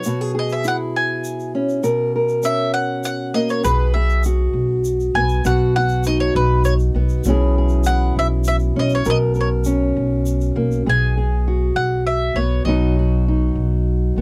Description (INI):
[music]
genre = acoustic folk duo or small band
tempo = 67 BPM (dotted quarters)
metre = 6/8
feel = straight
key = B major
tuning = A4 = 440 Hz
[part]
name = bowl-back mandolin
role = melody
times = 0.0-13.8 s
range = B4 to G#5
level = -24 LUFS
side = equal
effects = none
[part]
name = fingerpicked steel-string acoustic guitar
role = accompaniment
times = 0.0-14.2 s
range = B2 to A#4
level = -23 LUFS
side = equal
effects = none
[part]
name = tube shaker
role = percussion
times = 0.0-10.8 s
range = none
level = -39 LUFS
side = equal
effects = none
[part]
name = upright bass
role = bass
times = 3.6-14.2 s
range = B1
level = -21 LUFS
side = equal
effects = none
[sound]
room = little or no reverb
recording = dry, close 1970s-style studio recording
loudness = -19 LUFS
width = mono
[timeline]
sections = 0.0-10.9 A section; 10.9-14.2 B section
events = mandolin solo 0.0-10.9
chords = 0.1 C#m/B; 1.9 Bmaj7sus2; 3.7 Eadd9/B (rootless); 5.5 B; 7.3 C#m/B; 9.1 Bmaj7sus2; 10.9 Eadd9/B (rootless); 12.7 B